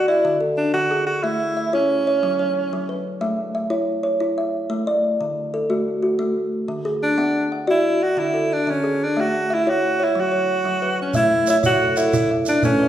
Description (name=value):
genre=southern african traditional, mbira-style interlocking cycle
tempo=121 BPM (dotted quarters)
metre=12/8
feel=straight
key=A major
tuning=A4 = 444 Hz
part: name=clear alto saxophone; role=melody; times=0.0-3.0, 7.0-12.9 s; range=C#4 to F#4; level=-20 LUFS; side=right 1 dB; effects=none
part: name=kalimba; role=arpeggios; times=0.0-12.9 s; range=D3 to F#5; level=-21 LUFS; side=equal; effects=none
part: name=shekere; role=percussion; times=11.1-12.8 s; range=none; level=-25 LUFS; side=right 2 dB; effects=none
part: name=kalimba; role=arpeggios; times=11.3-12.9 s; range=A3 to E5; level=-27 LUFS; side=right 3 dB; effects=none
room=wet recital hall reverb, RT60 1.4 s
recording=recorded in a church or concert hall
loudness=-18 LUFS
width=side -11 dB against mid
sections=0.0-11.1 A section; 11.1-12.9 A section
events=none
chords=0.2 D; 1.2 A; 2.2 F#5; 3.2 A; 5.2 D; 7.2 Bm; 8.2 D5; 9.2 A; 10.2 F#5; 11.1 A